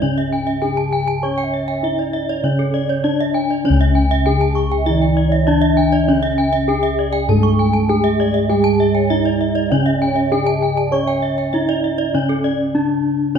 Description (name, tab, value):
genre	Balinese gamelan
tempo	99 BPM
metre	4/4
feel	straight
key	C# pelog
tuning	A4 = 440 Hz
part	gamelan-type bronze metallophone	melody	0.0-13.4 s	C#4 to C#5	-19 LUFS	left 2 dB	none
part	gamelan-type bronze metallophone	accompaniment	0.0-13.4 s	C#3 to C#4	-23 LUFS	right 4 dB	none
part	gamelan-type bronze metallophone	arpeggios	0.0-13.4 s	C#5 to C#6	-24 LUFS	left 4 dB	none
part	gamelan-type bronze metallophone	arpeggios	0.0-12.4 s	A4-40c to C#6	-25 LUFS	right 8 dB	none
part	gamelan-type bossed gongs	bass	0.0-13.4 s	C#2 to C#5	-20 LUFS	left 2 dB	none
part	mellow hollow xiao	second line	1.2-12.2 s	C#5 to G#5-42c	-26 LUFS	right 4 dB	none
room	moderate scoring stage reverb, RT60 1.9 s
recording	minimal, uncompressed stereo recording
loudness	-14 LUFS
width	side -7 dB against mid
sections	0.0-3.7 A section; 3.7-13.4 A section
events	none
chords	none